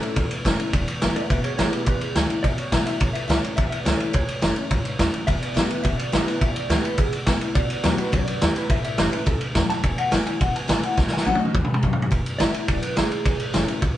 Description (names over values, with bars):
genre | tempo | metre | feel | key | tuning
rockabilly | 211 BPM | 4/4 | straight | E mixolydian | A4 = 439 Hz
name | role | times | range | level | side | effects
mellow electric guitar | melody | 0.0-13.8 s | G4 to A5 | -29 LUFS | equal | none
picked steel-string acoustic guitar | accompaniment | 0.0-14.0 s | E2 to F#4 | -29 LUFS | left 4 dB | none
upright bass | bass | 0.0-13.9 s | E1 to F#2 | -29 LUFS | equal | none
vintage drum kit | drums | 0.0-13.9 s | kick drum, ride cymbal, snare drum, toms | -21 LUFS | equal | none
room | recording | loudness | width
moderate stone room reverb, RT60 1.2 s | band playing live in one room, nothing above 10.3 kHz | -20 LUFS | side -13 dB against mid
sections
0.0-12.1 A section; 12.1-14.0 B section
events
clean electric guitar solo 0.0-12.1; drum fill 11.0-12.1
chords
0.0 A; 0.7 E; 3.0 A; 5.3 E; 7.6 B; 8.7 A; 9.8 E; 11.0 B; 12.1 E; 13.3 A